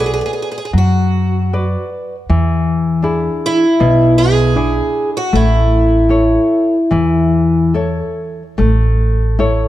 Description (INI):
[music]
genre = fado-style ballad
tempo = 69-81 BPM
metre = 4/4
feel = rubato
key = A major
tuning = A4 = 441 Hz
[part]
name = picked twelve-string acoustic guitar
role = melody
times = 0.0-7.7 s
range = E4 to G#4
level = -15 LUFS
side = equal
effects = none
[part]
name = nylon-string guitar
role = accompaniment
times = 0.0-9.7 s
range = B2 to D5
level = -17 LUFS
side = left 2 dB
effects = none
[part]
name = upright bass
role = bass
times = 0.0-9.6 s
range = A1 to F#2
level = -16 LUFS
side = right 1 dB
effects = none
[sound]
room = light reverb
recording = dark, warm production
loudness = -12 LUFS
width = side -14 dB against mid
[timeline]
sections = 0.0-8.6 A section; 8.6-9.7 A section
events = none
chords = 0.0 Bm; 2.3 E7; 5.3 A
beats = 0.74 1.52 | 2.30 3.05 3.80 4.56 | 5.33 6.11 6.91 7.75 | 8.59 9.40